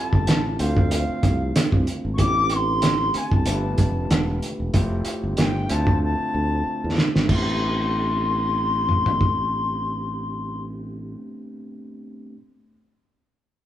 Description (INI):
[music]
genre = lush 1970s-style soul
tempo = 94 BPM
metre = 4/4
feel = swing 54% on 16ths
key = A minor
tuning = A4 = 440 Hz
[part]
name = bright reedy bansuri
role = melody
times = 0.0-10.6 s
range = F5 to D6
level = -25 LUFS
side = left 3 dB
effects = none
[part]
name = overdriven tine electric piano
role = accompaniment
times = 0.0-12.4 s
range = G3 to C5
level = -30 LUFS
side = equal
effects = none
[part]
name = fingered electric bass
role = bass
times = 0.1-11.1 s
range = E1 to E2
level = -26 LUFS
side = equal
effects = none
[part]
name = cloth-damped thuddy drum kit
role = drums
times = 0.1-9.4 s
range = crash cymbal, hi-hat, kick drum, snare drum, toms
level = -22 LUFS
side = right 1 dB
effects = none
[sound]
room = moderate large studio reverb, RT60 1.4 s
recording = band playing live in one room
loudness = -20 LUFS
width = side -12 dB against mid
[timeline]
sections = 0.0-7.3 A section; 7.3-9.8 B section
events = drum fill 6.0-7.3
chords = 0.0 Fmaj9; 0.6 Dm7; 2.2 Am11; 3.5 G9; 4.7 Fmaj9; 5.7 Dm7; 7.3 Am11